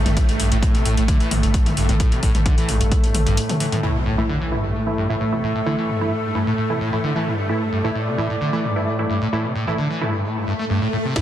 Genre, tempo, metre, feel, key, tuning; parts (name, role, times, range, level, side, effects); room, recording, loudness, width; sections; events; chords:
driving peak-time techno; 131 BPM; 4/4; straight; A4 = 442 Hz
overdriven acid bass; riff; 0.0-11.2 s; G2 to A3; -24 LUFS; equal; lush chorus, sidechain pumping, digital delay
saturated sub bass; bass; 0.0-3.4 s; A1; -21 LUFS; equal; overdrive, sidechain pumping, low-pass filter
swarming drone; drone; 0.0-11.2 s; A2 to A3; -28 LUFS; equal; built-in reverb, sidechain pumping
warbly tape-like pad; texture; 0.0-10.2 s; A3 to E6; -28 LUFS; equal; chorus, built-in reverb, sidechain pumping
techno drum kit; drums; 0.1-3.9, 11.2 s; crash cymbal, hi-hat, snare drum, toms; -25 LUFS; left 1 dB; sidechain pumping on hats, low-pass filter on hats, sidechain pumping on toms, low-pass filter on toms, sidechain pumping on cymbals, low-pass filter on cymbals, soft clipping on snare, low-pass filter on snare, low-pass filter on room
electronic kick drum; drums; 0.2-3.0, 11.2 s; -19 LUFS; equal
supersaw stab; stabs; 3.8-11.2 s; E3 to E4; -25 LUFS; right 1 dB; sidechain pumping, low-pass filter, digital delay
impact and swell; sound effects; 3.8-5.7, 10.4-11.2 s; -26 LUFS; equal
wet stone room reverb, RT60 1.1 s; dense, heavily limited modern master; -18 LUFS; side -11 dB against mid
0.0-3.8 A section; 3.8-11.2 B section
break 3.4-3.8; impact 3.8-5.7; swell 10.4-11.2
0.0 A5